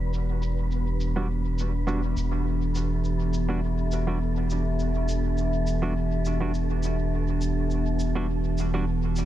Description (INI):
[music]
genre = ambient dub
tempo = 103 BPM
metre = 4/4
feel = swing 56% on 16ths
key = E minor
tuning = A4 = 435 Hz
[part]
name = warbly tape-like pad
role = sustained chords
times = 0.0-9.2 s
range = E3 to E5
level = -29 LUFS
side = right 1 dB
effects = chorus, built-in reverb
[part]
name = warm sub bass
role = bass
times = 0.0-9.2 s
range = E1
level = -26 LUFS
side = equal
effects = tube saturation
[part]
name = wind-like tuned noise texture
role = texture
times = 0.0-9.2 s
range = B3 to B4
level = -38 LUFS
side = left 1 dB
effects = built-in reverb
[part]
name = cabasa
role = drums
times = 0.1-9.2 s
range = none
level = -45 LUFS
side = left 1 dB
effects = low-pass filter on perc, dub echo
[part]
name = clean electric guitar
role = stabs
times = 1.2-8.8 s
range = G3 to F#4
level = -35 LUFS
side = right 3 dB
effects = low-pass filter, dub echo
[sound]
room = digital ambience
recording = dark, warm production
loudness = -24 LUFS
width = side -13 dB against mid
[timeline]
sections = 0.0-9.2 A section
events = none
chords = 0.0 Em7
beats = 0.42 1.00 1.59 | 2.17 2.75 3.33 3.92 | 4.50 5.08 5.67 6.25 | 6.83 7.41 8.00 8.58 | 9.16